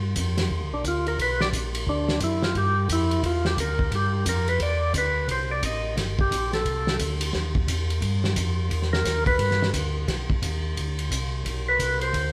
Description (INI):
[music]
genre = soul jazz organ trio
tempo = 176 BPM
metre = 4/4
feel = swing 63% on 8ths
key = G mixolydian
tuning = A4 = 439 Hz
[part]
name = mellow tonewheel organ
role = bass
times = 0.0-12.3 s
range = G1 to G2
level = -29 LUFS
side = equal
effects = slow rotary speaker
[part]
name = warm soul drum kit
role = drums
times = 0.2-12.2 s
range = hi-hat, kick drum, ride cymbal, snare drum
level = -30 LUFS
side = equal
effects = none
[part]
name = percussive tonewheel organ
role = melody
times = 0.7-12.3 s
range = D4 to D#5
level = -28 LUFS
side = equal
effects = slow rotary speaker
[sound]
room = moderate stone room reverb, RT60 1.3 s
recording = band playing live in one room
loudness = -25 LUFS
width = mono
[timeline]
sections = 0.0-12.3 A section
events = tonewheel organ solo 0.0-12.3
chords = 0.0 G7#9; 5.3 C7#9; 9.4 G; 10.8 D7(no3)